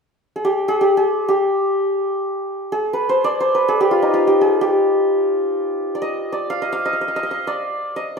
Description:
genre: persian.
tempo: free time.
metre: none.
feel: none.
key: G dastgah homayun.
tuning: A4 = 440 Hz.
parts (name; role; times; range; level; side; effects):
santur; melody; 0.4-8.2 s; Eb4 to F5; -16 LUFS; equal; none.
room: moderate concert hall reverb, RT60 1.9 s.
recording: minimal, uncompressed stereo recording.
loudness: -16 LUFS.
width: side -5 dB against mid.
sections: 0.1-8.2 A section.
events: none.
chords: none.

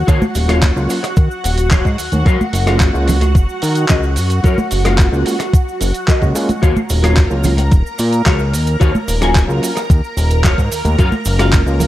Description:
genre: nu-disco, nu disco.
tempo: 110 BPM.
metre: 4/4.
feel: straight.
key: Eb minor.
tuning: A4 = 440 Hz.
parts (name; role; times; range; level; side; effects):
lush unison pad; sustained chords; 0.0-11.9 s; Gb4 to Bb5; -23 LUFS; equal; chorus, phaser, sidechain pumping.
fat analog bass; bass; 0.0-11.9 s; Eb1 to Eb3; -16 LUFS; equal; sidechain pumping.
semi-hollow electric guitar; riff; 0.1-11.8 s; Gb4 to Ab5; -22 LUFS; left 3 dB; ensemble chorus, slapback echo.
dusty soul sampler-style drum kit; drums; 0.1-11.9 s; handclaps, hi-hat, rim click; -22 LUFS; right 1 dB; overdrive.
electronic kick drum; drums; 0.1-11.6 s; none; -12 LUFS; equal; none.
cabasa and congas; percussion; 0.1-11.9 s; none; -22 LUFS; right 2 dB; none.
overdriven reed electric piano; accompaniment; 0.5-11.9 s; Gb3 to Gb4; -20 LUFS; equal; fast tremolo, vintage 12-bit sampler grit, slapback echo.
room: little or no reverb.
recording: none.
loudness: -12 LUFS.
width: side -14 dB against mid.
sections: 0.0-11.9 A section.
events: none.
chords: 0.0 Ebm9; 2.3 Gbmaj7; 6.6 Ebm9; 11.0 Gbmaj7.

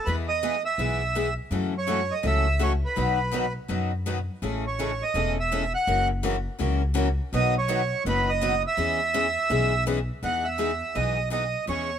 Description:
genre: acoustic string swing (jazz manouche).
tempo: 165 BPM.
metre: 4/4.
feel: swing 62% on 8ths.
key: E major.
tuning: A4 = 440 Hz.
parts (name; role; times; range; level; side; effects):
accordion; melody; 0.0-12.0 s; B4 to F#5; -26 LUFS; right 3 dB; none.
picked steel-string acoustic guitar; accompaniment; 0.1-11.9 s; B2 to G#4; -31 LUFS; left 9 dB; none.
picked steel-string acoustic guitar; accompaniment; 0.1-11.9 s; B2 to B4; -34 LUFS; right 6 dB; none.
upright bass; bass; 0.1-12.0 s; E1 to F#2; -28 LUFS; left 1 dB; none.
room: little or no reverb.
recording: minimal, uncompressed stereo recording.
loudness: -23 LUFS.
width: side -9 dB against mid.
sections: 0.0-10.2 A section; 10.2-12.0 B section.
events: none.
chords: 0.1 E; 1.5 F#m7; 3.0 B; 4.4 Amaj7; 5.9 F#7; 7.3 B; 8.8 E6; 10.2 Emaj7.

